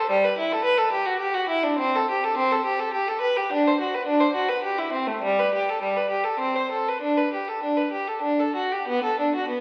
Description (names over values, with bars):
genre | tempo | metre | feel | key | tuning
classical, baroque-style suite movement for unaccompanied violin | 91-111 BPM | 3/4 | rubato | G major | A4 = 440 Hz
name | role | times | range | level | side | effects
rich violin | solo | 0.0-9.6 s | G3 to C5 | -24 LUFS | equal | none
room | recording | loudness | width
wet recital hall reverb, RT60 1.7 s | very old 78 rpm record, vinyl crackle | -24 LUFS | mono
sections
0.0-8.9 A section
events
none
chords
none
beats
| 0.09 0.64 1.20 | 1.79 2.37 2.93 | 3.49 4.05 4.61 | 5.22 5.81 6.39 | 7.01 7.63 8.24 | 8.88 9.50